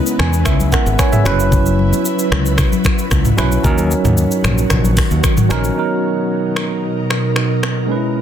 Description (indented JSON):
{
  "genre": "afrobeats",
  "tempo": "113 BPM",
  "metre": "4/4",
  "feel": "straight",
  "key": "B major",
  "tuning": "A4 = 441 Hz",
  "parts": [
    { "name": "tine electric piano", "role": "accompaniment", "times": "0.0-8.2 s", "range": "F#3 to G#5", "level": "-19 LUFS", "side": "right 2 dB", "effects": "medium stereo tremolo" },
    { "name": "ethereal airy pad", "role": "sustained chords", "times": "0.0-8.2 s", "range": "B2 to B4", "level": "-21 LUFS", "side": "equal", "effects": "ensemble chorus, built-in reverb" },
    { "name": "afro-pop drum kit", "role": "drums", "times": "0.1-7.8 s", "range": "finger snaps, hi-hat, kick drum, rim click, shaker, toms", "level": "-17 LUFS", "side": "equal", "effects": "soft clipping on snare" },
    { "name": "modern bright fingered electric bass", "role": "bass", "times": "0.2-5.7 s", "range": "F#1 to E2", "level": "-17 LUFS", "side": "equal", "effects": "none" },
    { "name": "congas", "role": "percussion", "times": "0.2-5.6 s", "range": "none", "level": "-25 LUFS", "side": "left 3 dB", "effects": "none" }
  ],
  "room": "digital ambience",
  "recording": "dense, heavily limited modern master",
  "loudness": "-13 LUFS",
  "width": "side -9 dB against mid",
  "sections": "0.0-5.8 A section; 5.8-8.2 B section",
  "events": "tine electric piano fill 0.0-1.5",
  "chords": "0.0 C#m7; 1.3 F#7sus4; 3.6 D#m7; 5.8 Bmaj7"
}